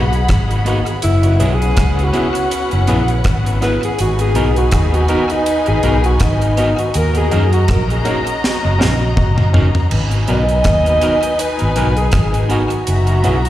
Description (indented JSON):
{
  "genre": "lovers rock reggae",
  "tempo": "81 BPM",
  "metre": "4/4",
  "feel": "swing 56% on 16ths",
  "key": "G# minor",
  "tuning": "A4 = 440 Hz",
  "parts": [
    { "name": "muted studio string section", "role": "second line", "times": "0.0-13.5 s", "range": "C#4 to B5", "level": "-22 LUFS", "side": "left 2 dB", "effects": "tape echo, slapback echo" },
    { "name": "barky tine electric piano", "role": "accompaniment", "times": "0.0-13.4 s", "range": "A#3 to A#4", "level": "-26 LUFS", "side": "left 3 dB", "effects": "overdrive, tape echo, slapback echo" },
    { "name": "electric guitar at the edge of break-up", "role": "stabs", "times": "0.0-13.4 s", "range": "A#3 to F#4", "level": "-24 LUFS", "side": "right 3 dB", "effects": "tape echo, slapback echo" },
    { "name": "vintage muted fingered electric bass", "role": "bass", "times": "0.0-13.5 s", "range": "F#1 to F#2", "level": "-15 LUFS", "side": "equal", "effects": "none" },
    { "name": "deep reggae drum kit", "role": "drums", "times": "0.1-13.5 s", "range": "crash cymbal, hi-hat, kick drum, rim click, snare drum, toms", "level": "-19 LUFS", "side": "equal", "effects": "tape echo" },
    { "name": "warm alto saxophone", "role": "melody", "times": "1.0-13.5 s", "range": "D#4 to D#5", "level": "-19 LUFS", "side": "equal", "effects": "tape echo, slapback echo" }
  ],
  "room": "little or no reverb",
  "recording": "live gig heard through the venue's PA, recital hall reverb",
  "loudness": "-12 LUFS",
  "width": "side -13 dB against mid",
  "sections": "0.0-9.9 A section; 9.9-13.5 B section",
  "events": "alto saxophone solo 0.0-9.9; drum fill 8.4-9.9",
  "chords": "0.0 G#m7; 1.0 F#7sus4; 4.0 G#m7; 7.0 D#m7; 9.9 G#m7; 12.9 F#7sus4"
}